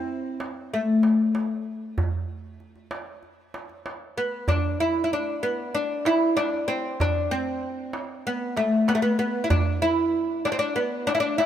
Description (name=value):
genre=Turkish makam ensemble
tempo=96 BPM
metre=4/4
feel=straight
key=unclear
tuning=A4 = 440 Hz
part: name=oud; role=melody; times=0.0-11.5 s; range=A3 to E4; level=-23 LUFS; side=left 1 dB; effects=none
part: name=darbuka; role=percussion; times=0.4-11.5 s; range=none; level=-28 LUFS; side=right 2 dB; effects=none
room=light reverb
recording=minimal, uncompressed stereo recording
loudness=-22 LUFS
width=side -10 dB against mid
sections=0.0-4.5 A section; 4.5-11.5 B section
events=none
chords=none